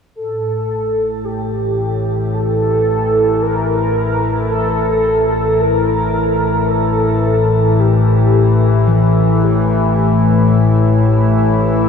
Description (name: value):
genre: dark ambient drone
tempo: free time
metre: none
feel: none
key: unclear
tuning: A4 = 440 Hz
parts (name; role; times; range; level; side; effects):
- deep rumbling drone; drone; 0.7-11.9 s; A1 to A2; -16 LUFS; left 3 dB; built-in reverb
- mellow horn-like synth lead; melody; 0.2-8.9 s; G4 to Bb4; -17 LUFS; equal; analog chorus, shimmer reverb, tape echo
- sweeping resonant pad; sustained chords; 0.2-11.9 s; A2 to E4; -18 LUFS; equal; chorus, shimmer reverb
- gamelan-type bossed gongs; arpeggios; 8.9-11.9 s; E3; -20 LUFS; equal; tape echo
room: wet huge ambient reverb, RT60 8.2 s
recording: studio ambience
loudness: -12 LUFS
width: side -6 dB against mid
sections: 0.1-11.9 A section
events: none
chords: 0.1 A5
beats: free time